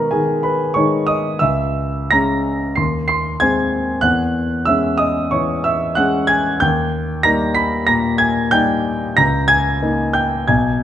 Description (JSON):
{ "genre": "classical, romantic character piece for solo piano", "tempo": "93 BPM", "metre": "4/4", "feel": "rubato", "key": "unclear", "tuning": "A4 = 440 Hz", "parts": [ { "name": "warm concert grand piano", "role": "solo", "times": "0.0-10.8 s", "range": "B1 to B#6", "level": "-15 LUFS", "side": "equal", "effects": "none" } ], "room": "moderate recital hall reverb, RT60 1.6 s", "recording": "close, detailed microphones", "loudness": "-15 LUFS", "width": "side -10 dB against mid", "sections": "0.0-10.8 A section", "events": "none", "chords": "0.0 G#m/B; 1.4 C#m; 2.8 G#/D#; 4.0 C#m/E; 6.6 D#; 9.2 D#7/C#" }